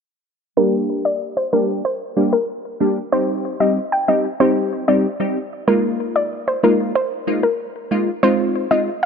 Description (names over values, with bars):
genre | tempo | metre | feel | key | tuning
dancehall | 94 BPM | 4/4 | straight | G phrygian | A4 = 440 Hz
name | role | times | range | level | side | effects
soft round pluck | melody | 0.6-9.1 s | Bb4 to G5 | -20 LUFS | equal | chorus, low-pass filter, ping-pong delay
wavetable chord stab | accompaniment | 0.6-8.9 s | G3 to G4 | -19 LUFS | equal | low-pass filter
room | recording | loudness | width
light reverb | none | -17 LUFS | side -6 dB against mid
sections
0.6-9.1 A section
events
filter sweep 0.6-9.1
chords
0.6 Gm; 3.1 Cm; 5.7 Bb7sus4; 8.2 Ab6